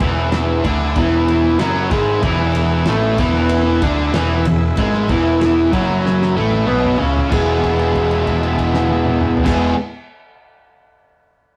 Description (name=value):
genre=psychedelic rock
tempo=94 BPM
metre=4/4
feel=straight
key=E mixolydian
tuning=A4 = 440 Hz
part: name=overdriven combo organ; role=sustained chords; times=0.0-9.7 s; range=B3 to E5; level=-29 LUFS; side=equal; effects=none
part: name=biting overdriven guitar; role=riff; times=0.0-9.7 s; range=E2 to G#4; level=-18 LUFS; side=equal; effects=none
part: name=fuzz picked electric bass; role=bass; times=0.0-9.7 s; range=E1 to D2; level=-23 LUFS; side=equal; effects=overdrive
part: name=cloth-damped thuddy drum kit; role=drums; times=0.0-9.6 s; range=crash cymbal, kick drum, ride cymbal, snare drum, toms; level=-26 LUFS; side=equal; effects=none
part: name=congas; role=percussion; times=0.0-7.6 s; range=none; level=-35 LUFS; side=equal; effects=none
room=moderate studio reverb, RT60 0.6 s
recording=rough rehearsal-room recording, warm saturation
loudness=-16 LUFS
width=mono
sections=0.0-7.3 A section; 7.3-9.8 B section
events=drum fill 6.0-7.3; held note 7.3-9.5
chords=0.0 E